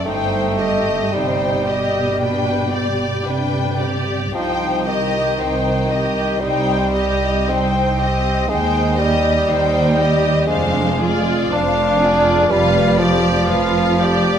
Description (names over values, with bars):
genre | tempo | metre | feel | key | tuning
classical, slow romantic movement for symphony orchestra | 53-62 BPM | 4/4 | rubato | C minor | A4 = 440 Hz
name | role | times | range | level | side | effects
warm studio violin section | melody | 0.0-14.4 s | D5 to G5 | -24 LUFS | left 6 dB | none
rich studio violin section | second line | 0.0-14.4 s | Ab4 to Eb5 | -24 LUFS | left 3 dB | none
rich studio viola section | accompaniment | 0.0-14.4 s | D4 to G4 | -24 LUFS | right 2 dB | none
warm bassoon | accompaniment | 0.0-14.4 s | Eb3 to D4 | -20 LUFS | right 1 dB | none
dark studio cello section | bass | 0.1-14.4 s | C2 to C3 | -23 LUFS | right 2 dB | none
dark studio double bass section | bass | 0.1-14.4 s | F1 to Eb2 | -23 LUFS | right 2 dB | none
room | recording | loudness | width
wet recital hall reverb, RT60 1.8 s | none | -15 LUFS | side -8 dB against mid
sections
0.0-14.4 A section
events
none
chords
0.1 Cm/G; 2.2 G; 4.4 Cm; 8.5 Cm/Eb; 10.5 Dm7b5/F; 12.5 G7/F